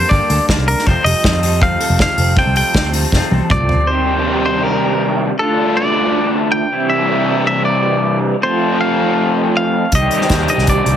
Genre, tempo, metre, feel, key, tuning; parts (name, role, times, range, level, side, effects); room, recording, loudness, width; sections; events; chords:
indie rock; 159 BPM; 4/4; straight; A4 = 441 Hz
twangy electric guitar; melody; 0.0-11.0 s; A4 to G5; -18 LUFS; equal
raw garage guitar; riff; 0.0-11.0 s; F2 to G4; -19 LUFS; left 7 dB; overdrive
raw garage guitar; riff; 0.0-11.0 s; G2 to A4; -20 LUFS; right 9 dB; overdrive, ensemble chorus
picked electric bass; bass; 0.0-3.7, 9.9-11.0 s; F1 to F2; -17 LUFS; equal
unplugged drum kit; drums; 0.1-3.8, 9.9-11.0 s; hi-hat, kick drum, snare drum, toms; -17 LUFS; equal
light reverb, small room ambience; heavily compressed radio sound, multiband compression; -12 LUFS; side -10 dB against mid
0.0-3.9 A section; 3.9-11.0 B section
drum fill 3.1-3.9
0.0 Gmadd9; 0.9 Fadd9; 3.9 Cm; 5.4 Dm; 6.7 C; 8.4 F; 9.9 Cm